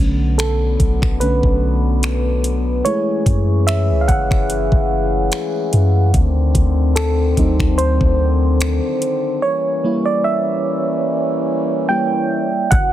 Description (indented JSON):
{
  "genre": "contemporary R&B",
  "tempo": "73 BPM",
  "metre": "4/4",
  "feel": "swing 54% on 16ths",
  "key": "unclear",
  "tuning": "A4 = 440 Hz",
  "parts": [
    { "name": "mellow FM electric piano", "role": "accompaniment", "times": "0.0-12.9 s", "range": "D3 to G5", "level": "-19 LUFS", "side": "right 2 dB", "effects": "chorus" },
    { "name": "mellow French horn section", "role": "sustained chords", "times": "0.0-12.9 s", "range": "D3 to G#4", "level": "-22 LUFS", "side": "left 3 dB", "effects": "stereo widening" },
    { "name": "soft 808-style bass", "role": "bass", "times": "0.0-12.9 s", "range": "F#1 to F#2", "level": "-17 LUFS", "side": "equal", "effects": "none" },
    { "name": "smooth R&B drum kit", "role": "drums", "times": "0.4-12.9 s", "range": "finger snaps, hi-hat, kick drum", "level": "-18 LUFS", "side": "equal", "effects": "none" }
  ],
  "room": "digital ambience",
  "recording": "heavily compressed radio sound",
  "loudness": "-14 LUFS",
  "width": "side -12 dB against mid",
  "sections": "0.0-12.7 A section",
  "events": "FM electric piano solo 0.0-12.7; break 9.4-12.7",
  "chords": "0.0 Bm7; 2.9 F#m9; 6.1 D7b9; 9.4 Edim7",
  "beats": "0.39 1.21 2.03 | 2.85 3.68 4.50 5.32 | 6.14 6.96 7.79 8.61 | 9.43 10.25 11.07 11.89 | 12.72"
}